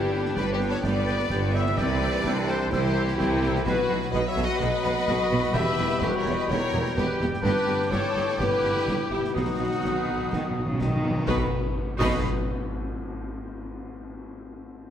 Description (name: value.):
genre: cinematic, heroic adventure film score.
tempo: 126 BPM.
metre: 4/4.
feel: straight.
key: unclear.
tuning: A4 = 440 Hz.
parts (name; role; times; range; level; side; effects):
warm symphonic violin section; melody; 0.0-12.3 s; D4 to D#5; -34 LUFS; left 2 dB; none.
rich symphonic violin section; second line; 0.0-12.3 s; F#4 to F#5; -36 LUFS; left 3 dB; none.
warm clarinet; second line; 0.0-12.2 s; B3 to G4; -34 LUFS; left 1 dB; none.
clear symphonic viola section; accompaniment; 0.0-12.3 s; E3 to B4; -36 LUFS; right 1 dB; none.
bright trombone section; sustained chords; 0.0-11.5 s; B2 to B3; -35 LUFS; right 2 dB; none.
mellow French horn section; sustained chords; 0.0-11.5 s; F#4 to E5; -29 LUFS; left 3 dB; none.
concert harp; arpeggios; 0.0-12.3 s; E2 to D#5; -38 LUFS; left 7 dB; none.
bright symphonic cello section; bass; 0.0-12.3 s; E2 to D#3; -32 LUFS; right 1 dB; none.
mellow tuba; bass; 0.0-12.2 s; E1 to C2; -34 LUFS; right 4 dB; none.
rich symphonic double bass section; bass; 0.0-12.3 s; E1 to C2; -32 LUFS; right 2 dB; none.
mellow cor anglais; second line; 0.1-12.2 s; D#5 to G5; -37 LUFS; right 4 dB; none.
small flute group; second line; 0.1-12.3 s; B5 to E6; -37 LUFS; left 3 dB; none.
concert snare drum, concert bass drum and clash cymbals; drums; 0.3-12.3 s; none; -34 LUFS; equal; none.
timpani; percussion; 3.7-4.3, 9.4-12.2 s; B2; -32 LUFS; equal; none.
cymbal swell and tam-tam; percussion; 7.4-13.9 s; none; -38 LUFS; left 3 dB; none.
room: moderate scoring stage reverb, RT60 1.6 s.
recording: none.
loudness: -23 LUFS.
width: side -9 dB against mid.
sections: 0.0-11.3 A section; 11.3-13.2 B section.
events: timpani fill 9.4-11.3; band accent 11.3-11.8.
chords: 0.0 G; 1.8 C; 3.7 B; 5.6 Em; 7.5 G; 9.4 B.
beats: 0.36 0.84 1.31 | 1.78 2.25 2.72 3.19 | 3.66 4.13 4.61 5.08 | 5.55 6.03 6.50 6.98 | 7.45 7.93 8.40 8.88 | 9.37 9.85 10.34 10.82 | 11.30 11.77 12.25 12.73.